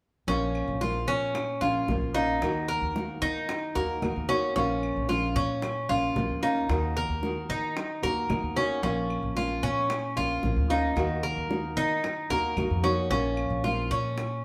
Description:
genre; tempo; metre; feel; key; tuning
latin, Cuban son and guajira; 112 BPM; 4/4; straight; Bb minor; A4 = 440 Hz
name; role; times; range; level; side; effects
nylon-string guitar; accompaniment; 0.3-14.2 s; Eb3 to Gb4; -33 LUFS; equal; none
Cuban tres; arpeggios; 0.3-14.4 s; Db4 to Bb4; -31 LUFS; equal; none
upright bass; bass; 0.3-14.4 s; Bb1 to Eb3; -35 LUFS; equal; none
bongos; percussion; 0.3-14.4 s; none; -40 LUFS; equal; none
claves; percussion; 0.6-14.4 s; none; -48 LUFS; equal; none
room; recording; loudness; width
wet large studio reverb, RT60 0.9 s; band playing live in one room; -28 LUFS; mono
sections
0.3-14.4 A section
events
none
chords
0.3 Bbm; 2.4 Ebm; 4.6 Bbm; 6.7 Ebm; 8.8 Bbm; 11.0 Ebm; 13.1 Bbm

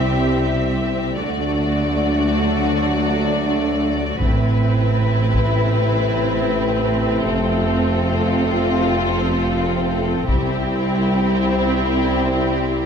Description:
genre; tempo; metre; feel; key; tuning
cinematic, epic orchestral film score; free time; none; none; unclear; A4 = 440 Hz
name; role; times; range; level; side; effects
warm symphonic violin section; melody; 0.0-12.9 s; G4 to E5; -27 LUFS; left 4 dB; none
warm symphonic violin section; second line; 0.0-12.9 s; E4 to G4; -27 LUFS; left 2 dB; none
clear studio viola section; accompaniment; 0.0-12.9 s; A3 to C4; -24 LUFS; right 2 dB; none
bright trombone section; sustained chords; 0.0-12.9 s; C3 to A3; -26 LUFS; right 2 dB; none
warm French horn section; sustained chords; 0.0-12.9 s; A3 to B4; -25 LUFS; left 5 dB; none
rich symphonic double bass section; bass; 0.0-12.9 s; F1 to D2; -24 LUFS; right 2 dB; none
warm symphonic cello section; bass; 0.0-12.9 s; C2 to D3; -23 LUFS; right 2 dB; none
taiko ensemble; drums; 4.2-5.7, 10.3-11.8 s; none; -22 LUFS; left 1 dB; none
room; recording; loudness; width
moderate scoring stage reverb, RT60 1.8 s; none; -16 LUFS; side -7 dB against mid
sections
0.0-12.9 A section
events
build-up 0.0-12.9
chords
0.0 C; 1.2 D; 4.2 Amadd9; 7.3 F; 10.3 C

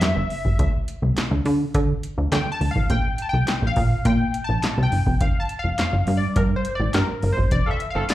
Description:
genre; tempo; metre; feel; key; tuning
early-eighties boogie funk; 104 BPM; 4/4; straight; D minor; A4 = 438 Hz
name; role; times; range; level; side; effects
funky polysynth comp; accompaniment; 0.0-8.1 s; Bb4 to A5; -26 LUFS; left 2 dB; chorus, slapback echo
plucky analog bass; bass; 0.0-8.0 s; F1 to D3; -20 LUFS; equal; none
electro analog drum machine; drums; 0.0-8.1 s; handclaps, hi-hat, kick drum, snare drum; -24 LUFS; equal; overdrive
warm horn section; second line; 7.7-8.0 s; E3 to A4; -28 LUFS; right 2 dB; none
room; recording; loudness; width
digital ambience; live gig heard through the venue's PA, club reverb; -19 LUFS; side -14 dB against mid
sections
0.0-8.1 A section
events
analog polysynth solo 0.0-8.1; band accent 7.5-8.1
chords
0.0 N.C.; 0.6 D5; 2.9 Bbsus2; 5.2 Gsus2; 7.5 Fsus2

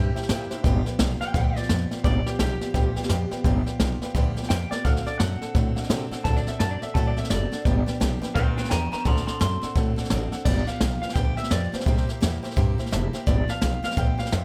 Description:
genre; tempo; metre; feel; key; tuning
rockabilly; 171 BPM; 4/4; swing 62% on 8ths; G mixolydian; A4 = 441 Hz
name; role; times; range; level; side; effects
electric guitar through a small old amp; melody; 0.0-14.4 s; G4 to C6; -34 LUFS; equal; tape echo
dark upright piano; accompaniment; 0.0-14.4 s; A4 to A5; -39 LUFS; equal; none
picked steel-string acoustic guitar; accompaniment; 0.0-14.4 s; G2 to A4; -36 LUFS; equal; none
upright bass; bass; 0.0-14.4 s; F1 to C3; -28 LUFS; equal; none
jazz brush drum kit; drums; 0.2-14.4 s; crash cymbal, hi-hat, kick drum, snare drum; -27 LUFS; equal; none
room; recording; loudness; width
little or no reverb; none; -24 LUFS; mono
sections
0.0-10.5 A section; 10.5-14.4 B section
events
clean electric guitar solo 0.0-10.5; drum fill 4.7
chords
0.0 C7; 0.6 G7; 4.8 D7; 7.7 G7; 9.1 D7; 10.5 G7; 11.9 C7; 13.3 G7

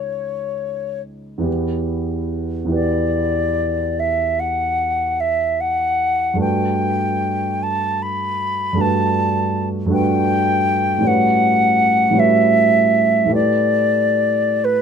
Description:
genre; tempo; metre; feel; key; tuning
classical, impressionist duo for flute and grand piano; 41-54 BPM (dotted quarters); 12/8; rubato; unclear; A4 = 440 Hz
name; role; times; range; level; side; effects
silver concert flute; melody; 0.0-14.8 s; B4 to B5; -18 LUFS; equal; none
warm concert grand piano; accompaniment; 0.0-14.8 s; C#2 to B4; -20 LUFS; right 1 dB; none
room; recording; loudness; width
little or no reverb; close, detailed microphones; -16 LUFS; side -7 dB against mid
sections
0.0-14.8 A section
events
none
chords
0.0 C#9; 1.5 Em7; 6.4 Gmaj9; 11.1 A13; 13.3 A9sus4

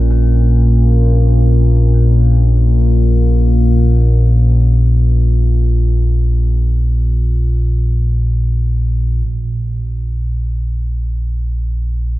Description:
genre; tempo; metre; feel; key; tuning
dark ambient drone; free time; none; none; Bb minor; A4 = 440 Hz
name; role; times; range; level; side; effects
gamelan-type bronze metallophone; arpeggios; 0.0-5.6 s; Db4; -31 LUFS; left 7 dB; tape echo
deep rumbling drone; drone; 0.0-12.2 s; Bb1 to Bb2; -11 LUFS; equal; built-in reverb, wide subtle chorus
bronze singing bowl; texture; 0.0-9.3 s; Bb4; -38 LUFS; left 1 dB; none
room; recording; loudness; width
light reverb, studio ambience; nothing above 10.4 kHz; -11 LUFS; side -17 dB against mid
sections
0.0-9.3 A section; 9.3-12.2 B section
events
none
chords
0.0 Bbm; 9.3 N.C.

